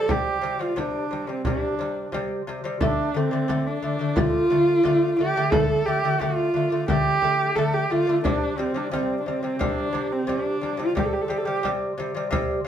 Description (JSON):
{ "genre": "mongolian traditional, Mongolian folk", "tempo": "88 BPM", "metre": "4/4", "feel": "straight", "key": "D yu mode", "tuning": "A4 = 440 Hz", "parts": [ { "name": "rich horsehead fiddle", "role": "melody", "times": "0.0-11.7 s", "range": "C4 to A4", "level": "-23 LUFS", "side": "right 1 dB", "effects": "none" }, { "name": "lute", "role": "arpeggios", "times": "0.0-12.7 s", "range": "C3 to A3", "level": "-26 LUFS", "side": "left 2 dB", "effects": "none" }, { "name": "frame drum", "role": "percussion", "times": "0.1-12.5 s", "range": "none", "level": "-28 LUFS", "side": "equal", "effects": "none" } ], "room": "moderate studio reverb, RT60 0.8 s", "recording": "band playing live in one room", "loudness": "-21 LUFS", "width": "side -9 dB against mid", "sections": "0.0-2.8 A section; 2.8-12.7 A section", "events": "none", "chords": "0.0 C5; 2.8 D5; 8.3 C5" }